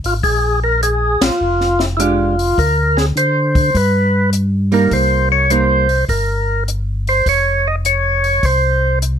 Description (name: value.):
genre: soul jazz organ trio.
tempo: 102 BPM.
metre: 4/4.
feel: swing 67% on 8ths.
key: Bb mixolydian.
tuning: A4 = 440 Hz.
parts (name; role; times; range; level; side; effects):
mellow tonewheel organ; bass; 0.0-9.2 s; F1 to D3; -17 LUFS; equal; overdrive, chorus vibrato, slow rotary speaker.
compact cocktail drum kit; drums; 0.0-9.2 s; hi-hat, kick drum, ride cymbal, snare drum; -21 LUFS; left 1 dB; none.
percussive tonewheel organ; melody; 0.1-9.0 s; E4 to Eb5; -15 LUFS; equal; slow rotary speaker.
archtop guitar, miked and amplified; accompaniment; 2.0-5.9 s; G3 to G4; -18 LUFS; right 6 dB; none.
room: light reverb.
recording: none.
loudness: -13 LUFS.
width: side -8 dB against mid.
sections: 0.0-9.2 A section.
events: band accent 1.1.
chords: 0.2 Bb6; 2.6 Bbadd9/D; 3.7 G; 4.9 Cm7; 7.3 F5.